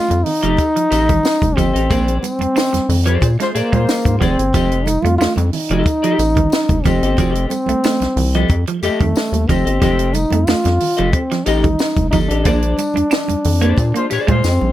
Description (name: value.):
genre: funk.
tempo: 91 BPM.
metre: 4/4.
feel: straight.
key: F mixolydian.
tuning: A4 = 439 Hz.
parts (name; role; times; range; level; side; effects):
dark trombone; melody; 0.0-14.7 s; A3 to F4; -18 LUFS; equal; tube saturation.
electric guitar at the edge of break-up; riff; 0.0-14.4 s; Eb3 to D4; -22 LUFS; right 6 dB; none.
clean electric guitar; accompaniment; 0.1-14.7 s; G4 to Eb5; -22 LUFS; left 5 dB; analog chorus.
rubbery square bass; bass; 0.1-14.7 s; F1 to Bb2; -18 LUFS; equal; none.
compact cocktail drum kit; drums; 0.1-14.6 s; hi-hat, kick drum, snare drum; -19 LUFS; equal; none.
congas; percussion; 0.1-14.7 s; none; -27 LUFS; right 6 dB; none.
tambourine; percussion; 0.6-14.6 s; none; -34 LUFS; left 8 dB; none.
mellow horn section; second line; 3.4-4.2, 14.0-14.7 s; Ab3 to C5; -22 LUFS; left 4 dB; none.
room: studio ambience.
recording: none.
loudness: -13 LUFS.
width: side -13 dB against mid.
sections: 0.0-14.7 A section.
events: band accent 1.9-4.5, 12.5-14.7; drum fill 14.4.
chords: 0.0 F9; 1.9 Bb9; 4.5 F9; 12.5 Bb9.